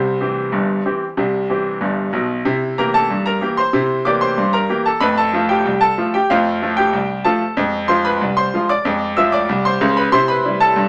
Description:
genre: ragtime piano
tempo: 94 BPM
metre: 2/4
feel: straight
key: C major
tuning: A4 = 439 Hz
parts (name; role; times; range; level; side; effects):
- bright grand piano; solo; 0.0-10.9 s; G1 to E6; -17 LUFS; equal; none
room: wet studio reverb, RT60 0.8 s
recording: none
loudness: -17 LUFS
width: mono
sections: 0.0-2.5 A section; 2.5-10.9 B section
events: none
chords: 0.0 C; 2.5 C7; 5.0 F; 7.6 Fm; 10.1 C

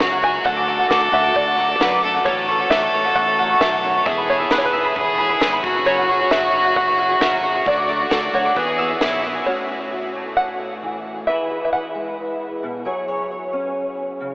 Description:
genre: indie folk with a building arrangement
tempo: 133 BPM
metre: 4/4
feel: straight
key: A major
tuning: A4 = 438 Hz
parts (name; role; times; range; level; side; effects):
- open-back banjo; melody; 0.0-12.8 s; B4 to G#5; -23 LUFS; equal; tape echo
- clear fiddle; second line; 0.0-9.4 s; E4 to B4; -21 LUFS; equal; none
- picked steel-string acoustic guitar; accompaniment; 0.0-9.5 s; F#2 to A4; -26 LUFS; equal; wide subtle chorus
- mandolin; arpeggios; 0.0-9.5 s; B4 to E6; -21 LUFS; equal; tape echo
- fingered electric bass; bass; 0.0-9.4 s; E1 to F#2; -35 LUFS; equal; none
- compact cocktail drum kit; drums; 0.0-9.1 s; kick drum, snare drum; -26 LUFS; equal; none
- fingerpicked acoustic archtop guitar; accompaniment; 9.5-14.3 s; A2 to C#5; -25 LUFS; equal; ensemble chorus
room: wet huge ambient reverb, RT60 8.1 s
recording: dreamy mix soaked in reverb, telephone sound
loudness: -16 LUFS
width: side -24 dB against mid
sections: 0.0-9.5 A section; 9.5-14.3 B section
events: none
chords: 0.5 D; 2.3 A6; 4.1 E; 5.6 F#sus2; 7.7 D; 8.6 E; 9.5 A6; 11.3 E; 12.9 F#sus2

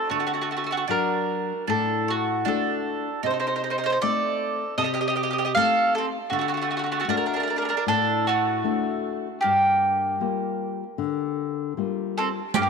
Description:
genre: italian folk, Italian serenade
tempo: 77 BPM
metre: 4/4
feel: straight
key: G minor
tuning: A4 = 439 Hz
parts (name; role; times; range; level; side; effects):
- mandolin; melody; 0.0-12.7 s; F#4 to F5; -24 LUFS; right 1 dB; none
- mandolin; second line; 0.0-12.7 s; A3 to A4; -29 LUFS; right 11 dB; none
- flamenco guitar; accompaniment; 0.1-12.7 s; G2 to F#4; -28 LUFS; left 9 dB; none
- riq; percussion; 12.5-12.7 s; none; -24 LUFS; right 13 dB; none
room: moderate plate reverb, RT60 2.9 s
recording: 1960s-style stereo with parts hard left and right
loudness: -22 LUFS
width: side -5 dB against mid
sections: 0.0-12.5 A section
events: none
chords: 0.0 D; 3.2 Adim/C; 6.3 D; 9.4 Gm7

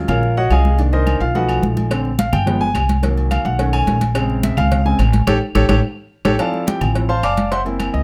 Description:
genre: Afro-Cuban jazz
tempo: 214 BPM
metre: 4/4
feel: straight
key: unclear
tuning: A4 = 439 Hz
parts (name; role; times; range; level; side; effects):
- clear grand piano; accompaniment; 0.0-8.0 s; Db3 to D6; -22 LUFS; equal; none
- upright bass; bass; 0.0-8.0 s; F#1 to Db2; -20 LUFS; equal; none
- agogo bells and timbales; percussion; 0.1-7.9 s; none; -30 LUFS; equal; none
- claves; percussion; 0.1-7.9 s; none; -33 LUFS; equal; none
- congas; percussion; 0.1-8.0 s; none; -25 LUFS; equal; none
- cowbell; percussion; 1.9-7.9 s; none; -32 LUFS; equal; none
room: light reverb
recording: none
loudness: -17 LUFS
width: mono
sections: 0.0-6.4 A section; 6.4-8.0 A section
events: grand piano solo 0.0-8.0; drum fill 5.3-6.4; band accent 5.3-6.4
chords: 0.0 Ebm11; 0.8 Cm7; 1.4 B7#11; 1.9 Bbmaj7; 2.5 G7b9; 3.0 Cm7b5; 3.6 B9; 4.2 Bbm7; 5.3 A7; 6.4 Dm7; 7.5 F#7#11

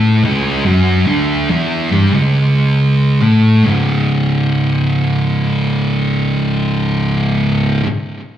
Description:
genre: metal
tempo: 67-73 BPM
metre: 4/4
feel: straight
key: C# minor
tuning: A4 = 440 Hz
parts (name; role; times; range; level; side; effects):
- thick fuzz guitar; solo; 0.0-7.9 s; C#2 to A3; -12 LUFS; equal; distortion, digital delay
room: moderate club reverb, RT60 0.6 s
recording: live gig heard through the venue's PA, club reverb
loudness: -12 LUFS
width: side -11 dB against mid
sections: 0.0-3.7 A section; 3.7-7.2 B section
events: slowing down 0.0-3.7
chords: 0.0 C#m; 3.7 C#5

